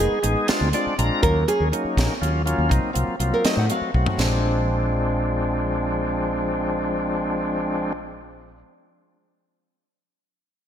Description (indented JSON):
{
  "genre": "electric jazz fusion",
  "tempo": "81 BPM (dotted quarters)",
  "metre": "6/8",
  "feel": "straight",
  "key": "unclear",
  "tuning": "A4 = 438 Hz",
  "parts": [
    { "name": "nylon-string guitar", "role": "melody", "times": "0.0-4.1 s", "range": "Ab4 to Gb5", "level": "-26 LUFS", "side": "right 2 dB", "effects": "ping-pong delay" },
    { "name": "bright tonewheel organ", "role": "accompaniment", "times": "0.0-7.9 s", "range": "F3 to Bb5", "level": "-23 LUFS", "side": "left 1 dB", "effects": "slow rotary speaker, overdrive" },
    { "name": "mellow fretless electric bass", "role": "bass", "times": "0.0-8.6 s", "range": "A1 to A2", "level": "-24 LUFS", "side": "equal", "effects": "none" },
    { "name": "tight funk drum kit", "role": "drums", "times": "0.2-4.3 s", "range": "hi-hat, kick drum, snare drum, splash cymbal, toms", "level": "-25 LUFS", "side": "equal", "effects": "gated reverb" }
  ],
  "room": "moderate lush hall reverb, RT60 1.9 s",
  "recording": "bright 1980s-style digital production",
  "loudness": "-20 LUFS",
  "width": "side -9 dB against mid",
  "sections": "0.0-4.2 A section; 4.2-7.2 B section",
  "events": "nylon-string guitar solo 0.0-4.2; tonewheel organ fill 0.5-1.2; drum fill 3.9",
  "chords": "0.5 Bb7; 1.2 Ebm9; 2.7 Cm7b5; 3.4 F7b9; 4.2 Bb7"
}